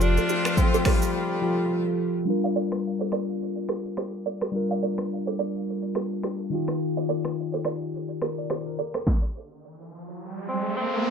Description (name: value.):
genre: afrobeats.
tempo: 106 BPM.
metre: 4/4.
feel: swing 58% on 16ths.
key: G minor.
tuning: A4 = 441 Hz.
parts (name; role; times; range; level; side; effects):
warm tenor saxophone; melody; 0.0-2.0, 10.5-11.1 s; G3 to D4; -29 LUFS; equal; tape echo.
clear horn section; second line; 0.0-2.0 s; A3 to F4; -31 LUFS; left 2 dB; tape echo.
mellow tine electric piano; accompaniment; 0.0-9.1 s; Eb3 to D5; -27 LUFS; left 2 dB; phaser.
deep house drum kit; drums; 0.0-9.2 s; finger snaps, hi-hat, kick drum, rim click, shaker, snare drum; -26 LUFS; equal; none.
kalimba; riff; 0.2-9.0 s; D4 to F5; -31 LUFS; right 6 dB; tape echo.
riser; sound effects; 10.0-11.1 s; none; -30 LUFS; right 3 dB; none.
room: moderate small room reverb, RT60 0.5 s.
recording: low-pass filter.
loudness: -24 LUFS.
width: side -6 dB against mid.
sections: 0.0-2.3 A section; 2.3-11.1 B section.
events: break 1.1-2.3; filter sweep 2.3-11.1; riser 10.0-11.1.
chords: 0.0 Fadd9; 2.3 Gm7; 6.5 Ebadd9; 8.8 N.C..